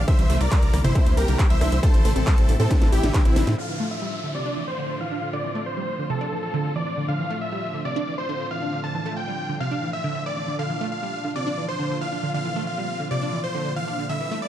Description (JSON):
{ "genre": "uplifting trance", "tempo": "137 BPM", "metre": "4/4", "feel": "straight", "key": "D minor", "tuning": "A4 = 439 Hz", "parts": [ { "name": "big supersaw lead", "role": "melody", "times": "0.0-14.5 s", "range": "C4 to A5", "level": "-28 LUFS", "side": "equal", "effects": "sidechain pumping, low-pass filter, dub echo" }, { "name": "supersaw stab", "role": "second line", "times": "0.0-3.5 s", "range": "E4 to E5", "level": "-34 LUFS", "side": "equal", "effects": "none" }, { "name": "rich chamber string section", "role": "sustained chords", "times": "0.0-14.5 s", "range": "A2 to F4", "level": "-32 LUFS", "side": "left 2 dB", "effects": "sidechain pumping" }, { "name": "wide unison pluck", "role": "arpeggios", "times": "0.0-14.4 s", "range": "C3 to D4", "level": "-29 LUFS", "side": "right 2 dB", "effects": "phaser, sidechain pumping" }, { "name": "tight sequencer bass", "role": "bass", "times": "0.0-3.5 s", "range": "G1 to A2", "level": "-22 LUFS", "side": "equal", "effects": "sidechain pumping" }, { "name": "electronic kick drum", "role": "drums", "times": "0.1-3.2 s", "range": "none", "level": "-19 LUFS", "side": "equal", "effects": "distortion, overdrive" }, { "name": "techno drum kit", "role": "drums", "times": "0.1-3.6 s", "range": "handclaps, hi-hat, rim click, snare drum", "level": "-31 LUFS", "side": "equal", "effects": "overdrive" }, { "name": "downlifter and riser", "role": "sound effects", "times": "3.6-7.1, 14.1-14.5 s", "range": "none", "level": "-39 LUFS", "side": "equal", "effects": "none" } ], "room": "little or no reverb", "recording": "dark, warm production", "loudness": "-21 LUFS", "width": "side -12 dB against mid", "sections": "0.0-3.6 A section; 3.6-14.5 B section", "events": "drop 0.0-3.6; drum fill 2.7-3.6; band accent 3.5; filter sweep on supersaw synth 3.6-14.5", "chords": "0.1 C7; 1.8 Am7; 3.6 Dm7; 10.6 Bb" }